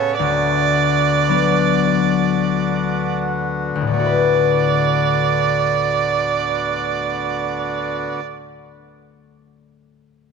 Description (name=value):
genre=celtic folk, Celtic slow air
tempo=41-58 BPM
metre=3/4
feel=rubato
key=D major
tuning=A4 = 438 Hz
part: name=rich fiddle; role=melody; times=0.0-8.2 s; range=C#5 to D5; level=-20 LUFS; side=right 10 dB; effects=slapback echo
part: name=concert harp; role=accompaniment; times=0.0-8.3 s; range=D2 to B4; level=-20 LUFS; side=left 8 dB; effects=none
part: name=accordion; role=sustained chords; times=0.0-8.2 s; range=C#3 to A4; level=-25 LUFS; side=right 1 dB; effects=none
room=moderate echo chamber reverb, RT60 2.3 s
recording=1960s-style stereo with parts hard left and right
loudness=-16 LUFS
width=side -5 dB against mid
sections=0.0-3.9 A section; 3.9-8.2 B section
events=slowing down 0.0-3.9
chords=0.2 D6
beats=| 0.18 1.27 2.50 | 3.90 5.34 6.75